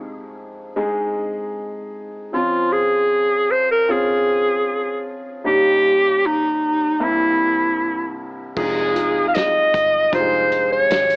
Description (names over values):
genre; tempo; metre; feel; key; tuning
pop ballad; 77 BPM; 4/4; straight; F minor; A4 = 439 Hz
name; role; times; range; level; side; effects
clear baby grand piano; accompaniment; 0.0-11.2 s; C2 to Ab4; -25 LUFS; left 1 dB; cassette tape
bright clarinet; melody; 2.3-11.2 s; Eb4 to F5; -16 LUFS; equal; cassette tape
vintage muted fingered electric bass; bass; 8.6-11.2 s; F1 to Ab1; -39 LUFS; equal; none
natural country drum kit; drums; 8.6-11.2 s; crash cymbal, hi-hat, kick drum, snare drum; -26 LUFS; equal; none
room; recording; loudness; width
light reverb, small room reverb; home recording on cassette, AM radio sound; -16 LUFS; side -32 dB against mid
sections
0.0-8.6 A section; 8.6-11.2 B section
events
none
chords
0.0 Fm7; 2.3 Dbmaj7/F; 5.4 Eb7; 7.0 C7; 8.6 Fm7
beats
0.77 1.55 | 2.33 3.11 3.89 4.67 | 5.45 6.23 7.00 7.78 | 8.56 9.34 10.12 10.90